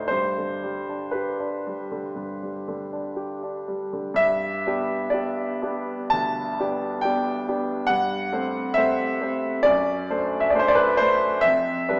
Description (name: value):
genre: classical, romantic nocturne for solo piano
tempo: 57-70 BPM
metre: 4/4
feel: rubato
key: G major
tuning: A4 = 440 Hz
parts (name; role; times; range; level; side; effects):
- warm grand piano; solo; 0.0-12.0 s; D2 to A5; -21 LUFS; equal; none
room: wet scoring stage reverb, RT60 1.5 s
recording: recorded in a church or concert hall, small speaker sound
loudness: -21 LUFS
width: side -30 dB against mid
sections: 0.0-4.2 A section; 4.2-12.0 A section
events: none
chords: 0.1 G; 7.9 Am7/G; 9.7 D7/F#; 11.4 G7/F